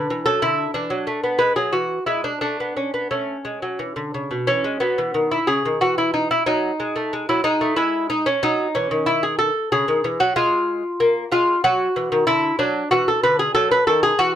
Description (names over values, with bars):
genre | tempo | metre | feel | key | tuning
classical, baroque-style dance for lute | 92 BPM | 3/4 | rubato | A major, E major from 4.5 s | A4 = 440 Hz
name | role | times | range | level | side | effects
lute | solo | 0.0-14.4 s | B2 to B4 | -18 LUFS | equal | none
room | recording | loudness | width
moderate studio reverb, RT60 0.6 s | none | -18 LUFS | side -10 dB against mid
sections
0.0-4.5 A section; 4.5-14.4 A section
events
none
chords
0.4 Bm/D; 1.7 E; 2.4 A; 4.5 E; 6.5 D#dim/F#; 7.8 N.C.; 8.4 F#5; 10.4 Fmadd11/Ab; 11.6 D#m; 12.3 D69; 13.6 D#dim